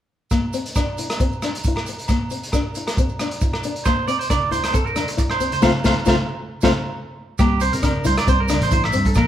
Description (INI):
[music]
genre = highlife guitar band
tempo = 136 BPM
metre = 4/4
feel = swing 54% on 16ths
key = C mixolydian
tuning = A4 = 440 Hz
[part]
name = fingerpicked acoustic archtop guitar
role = accompaniment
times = 0.3-9.3 s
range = A3 to F4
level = -24 LUFS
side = left 4 dB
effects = none
[part]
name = crunchy breakbeat drum kit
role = drums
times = 0.3-9.3 s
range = hi-hat, kick drum, rim click, snare drum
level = -22 LUFS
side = equal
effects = none
[part]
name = agogo bells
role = percussion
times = 0.3-9.3 s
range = none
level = -31 LUFS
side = right 1 dB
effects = none
[part]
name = maracas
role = percussion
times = 0.3-9.3 s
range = none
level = -37 LUFS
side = right 6 dB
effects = none
[part]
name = clean electric guitar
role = arpeggios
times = 3.9-9.3 s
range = G4 to F5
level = -23 LUFS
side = right 4 dB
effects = none
[part]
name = congas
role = percussion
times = 4.3-9.1 s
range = none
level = -28 LUFS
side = right 2 dB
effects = none
[part]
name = fingered electric bass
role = bass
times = 7.4-9.3 s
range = A1 to C3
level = -22 LUFS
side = equal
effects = none
[sound]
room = moderate stone room reverb, RT60 1.3 s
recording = band playing live in one room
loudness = -18 LUFS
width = side -11 dB against mid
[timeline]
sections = 0.3-7.4 A section; 7.4-9.3 B section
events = band accent 5.6-7.4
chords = 0.3 Bb; 3.9 C; 5.6 F; 7.4 C